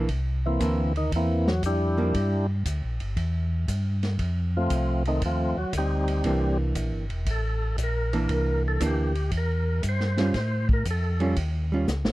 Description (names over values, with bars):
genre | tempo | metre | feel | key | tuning
soul jazz organ trio | 117 BPM | 4/4 | swing 68% on 8ths | C mixolydian | A4 = 440 Hz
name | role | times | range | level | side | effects
archtop guitar, miked and amplified | accompaniment | 0.0-2.1, 6.2-11.9 s | E3 to F4 | -27 LUFS | right 2 dB | none
mellow tonewheel organ | bass | 0.0-12.1 s | E1 to A2 | -26 LUFS | equal | chorus vibrato, slow rotary speaker
vintage drum kit | drums | 0.1-12.1 s | hi-hat, kick drum, ride cymbal, snare drum | -31 LUFS | equal | none
percussive tonewheel organ | melody | 0.5-11.4 s | Eb3 to C5 | -28 LUFS | equal | slow rotary speaker
room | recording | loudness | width
small room ambience | dry, close 1970s-style studio recording | -23 LUFS | side -17 dB against mid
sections
0.0-12.1 A section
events
tonewheel organ solo 0.0-12.1; drum fill 11.9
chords
0.1 C9; 2.1 Gm; 3.2 Em; 4.2 F9; 6.2 C9; 10.3 Aaug7